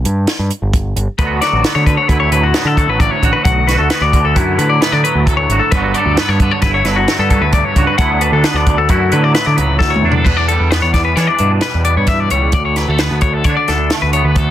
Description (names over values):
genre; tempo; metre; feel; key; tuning
math rock and midwest emo; 132 BPM; 5/4; straight; D major; A4 = 441 Hz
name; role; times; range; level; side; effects
growling picked electric bass; bass; 0.0-14.5 s; G1 to E3; -16 LUFS; equal; overdrive
compact cocktail drum kit; drums; 0.1-14.5 s; crash cymbal, hi-hat, kick drum, snare drum, toms; -16 LUFS; equal; none
twangy electric guitar; accompaniment; 1.2-14.5 s; D2 to A4; -18 LUFS; right 6 dB; ensemble chorus
clean electric guitar; arpeggios; 1.2-14.5 s; F#4 to F#5; -16 LUFS; left 6 dB; analog delay
room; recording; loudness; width
light reverb; dense, heavily limited modern master; -11 LUFS; side -12 dB against mid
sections
0.0-10.3 A section; 10.3-14.5 B section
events
drum fill 9.8-10.3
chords
0.0 N.C.; 1.2 D6; 5.7 Gmaj7; 8.0 D69; 10.3 Em7; 12.5 Bm7/D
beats
0.28 0.73 | 1.19 1.64 2.09 2.54 3.00 | 3.45 3.90 4.36 4.81 5.26 | 5.72 6.17 6.63 7.08 7.53 | 7.99 8.44 8.90 9.35 9.81 | 10.27 10.72 11.18 11.63 12.09 | 12.54 13.00 13.46 13.91 14.37